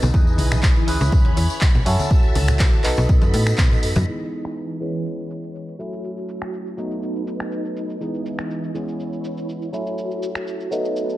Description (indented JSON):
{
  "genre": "filtered disco house",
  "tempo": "122 BPM",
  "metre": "4/4",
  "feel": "swing 53% on 16ths",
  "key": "E major",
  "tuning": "A4 = 440 Hz",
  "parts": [
    { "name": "barky tine electric piano", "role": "accompaniment", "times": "0.0-11.2 s", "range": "E3 to B4", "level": "-26 LUFS", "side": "equal", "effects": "overdrive, phaser, sidechain pumping, low-pass filter" },
    { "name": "phased string machine", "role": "sustained chords", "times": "0.0-11.2 s", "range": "E3 to B5", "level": "-30 LUFS", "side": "right 1 dB", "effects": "ensemble chorus, phaser, sidechain pumping, low-pass filter" },
    { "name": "slap-like FM bass", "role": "bass", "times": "0.0-4.0 s", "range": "B1 to B2", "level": "-20 LUFS", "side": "equal", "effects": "sidechain pumping, low-pass filter" },
    { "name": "tambourine and congas", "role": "percussion", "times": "0.0-4.1 s", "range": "none", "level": "-28 LUFS", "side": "left 2 dB", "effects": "sidechain pumping on perc, low-pass filter on perc" },
    { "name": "electronic kick drum", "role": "drums", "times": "0.1-3.7 s", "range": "none", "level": "-17 LUFS", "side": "equal", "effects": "none" },
    { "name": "punchy analog drum machine", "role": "drums", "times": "0.4-11.2 s", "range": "crash cymbal, finger snaps, handclaps, hi-hat, shaker", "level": "-28 LUFS", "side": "equal", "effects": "sidechain pumping on hats, low-pass filter on hats, low-pass filter on snare, sidechain pumping on cymbals, low-pass filter on cymbals, sidechain pumping on perc, low-pass filter on perc" }
  ],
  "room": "digital ambience",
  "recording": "echo-heavy mix",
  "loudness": "-18 LUFS",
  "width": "side -16 dB against mid",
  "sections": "0.0-4.1 A section; 4.1-11.2 B section",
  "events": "filter sweep on drum 4.1-11.2; filter sweep 4.1-11.2",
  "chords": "0.1 Emaj7; 0.9 C#m7; 1.9 F#m7; 2.8 B7; 4.1 Emaj7; 4.8 C#m7; 5.8 F#m7; 6.8 B7; 8.0 Emaj7; 8.7 C#m7; 9.7 F#m7"
}